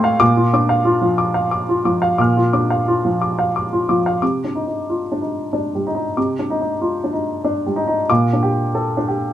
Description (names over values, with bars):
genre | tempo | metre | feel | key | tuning
neoclassical minimalist piano | 92 BPM | 3/4 | rubato | unclear | A4 = 443 Hz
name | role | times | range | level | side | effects
clear upright piano | solo | 0.0-9.3 s | A2 to F6 | -16 LUFS | equal | none
room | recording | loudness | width
moderate small room reverb, RT60 0.5 s | band playing live in one room | -16 LUFS | side -11 dB against mid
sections
0.0-4.2 A section; 4.2-9.3 B section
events
none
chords
0.2 Bb; 4.2 Cmadd9; 8.1 Gm/Bb